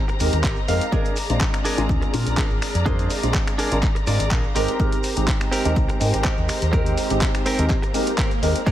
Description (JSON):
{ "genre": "filtered disco house", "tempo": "124 BPM", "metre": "4/4", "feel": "straight", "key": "unclear", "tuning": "A4 = 441 Hz", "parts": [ { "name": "warm symphonic string section", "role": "sustained chords", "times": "0.0-8.7 s", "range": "G4 to Bb5", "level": "-30 LUFS", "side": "equal", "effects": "vintage 12-bit sampler grit, sidechain pumping, low-pass filter" }, { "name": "direct-recorded clean electric guitar", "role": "riff", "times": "0.1-8.7 s", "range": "C4 to G5", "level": "-29 LUFS", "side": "right 2 dB", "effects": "spring reverb, sidechain pumping, low-pass filter" }, { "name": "dusty soul sampler-style drum kit", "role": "drums", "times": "0.1-8.7 s", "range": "crash cymbal, finger snaps, handclaps, hi-hat", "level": "-29 LUFS", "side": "left 1 dB", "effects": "sidechain pumping on hats, sidechain pumping on cymbals" }, { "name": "maracas", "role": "percussion", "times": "0.1-8.7 s", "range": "none", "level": "-40 LUFS", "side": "right 5 dB", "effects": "none" }, { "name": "warm grand piano", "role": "accompaniment", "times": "0.2-8.7 s", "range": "Ab3 to C5", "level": "-26 LUFS", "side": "equal", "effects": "phaser, sidechain pumping, low-pass filter" }, { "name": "fingered electric bass", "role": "bass", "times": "0.2-8.5 s", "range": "Ab1 to Bb2", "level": "-23 LUFS", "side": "equal", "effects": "sidechain pumping, low-pass filter" }, { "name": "electronic kick drum", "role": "drums", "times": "0.4-8.7 s", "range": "none", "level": "-23 LUFS", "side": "equal", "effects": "none" }, { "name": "swell", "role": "sound effects", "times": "7.9-8.7 s", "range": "none", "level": "-32 LUFS", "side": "left 2 dB", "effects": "none" } ], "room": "light reverb, digital ambience", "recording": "none", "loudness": "-18 LUFS", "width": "side -12 dB against mid", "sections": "0.0-8.7 A section", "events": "clean electric guitar fill 0.2-0.9, 3.8-4.8; swell 7.9-8.7", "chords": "0.0 Abmaj9; 0.9 Bb7; 4.6 Abmaj9" }